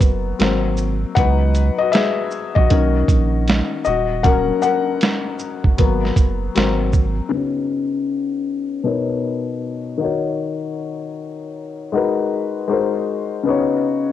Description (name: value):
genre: lo-fi hip hop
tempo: 78 BPM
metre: 4/4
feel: swing 64% on 16ths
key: G# minor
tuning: A4 = 441 Hz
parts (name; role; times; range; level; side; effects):
- felt-muted upright piano; accompaniment; 0.0-14.1 s; B2 to F#5; -19 LUFS; left 6 dB; cassette tape, low-pass filter
- soft dub sub bass; bass; 0.0-7.2 s; D#1 to C#2; -20 LUFS; right 2 dB; none
- lo-fi sampler-style drum kit; drums; 0.0-7.2 s; hi-hat, kick drum, shaker, snare drum; -17 LUFS; right 2 dB; cassette tape
room: light reverb, digital ambience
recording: home recording on cassette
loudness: -16 LUFS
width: side -12 dB against mid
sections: 0.0-7.3 A section; 7.3-14.1 B section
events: felt piano solo 0.0-7.3; filter sweep on felt piano 7.3-14.1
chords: 0.4 G#9; 1.2 C#7sus4; 2.7 Bmaj9; 3.9 D#m7; 5.8 G#m9; 6.6 G#9; 7.3 C#7sus4; 8.9 Bmaj9; 10.0 D#m7; 11.9 G#m9; 12.7 G#9; 13.5 C#7sus4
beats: 0.40 | 1.17 1.94 2.71 3.48 | 4.25 5.01 5.78 6.55 | 7.32 8.09 8.86 9.63 | 10.40 11.17 11.94 12.71 | 13.47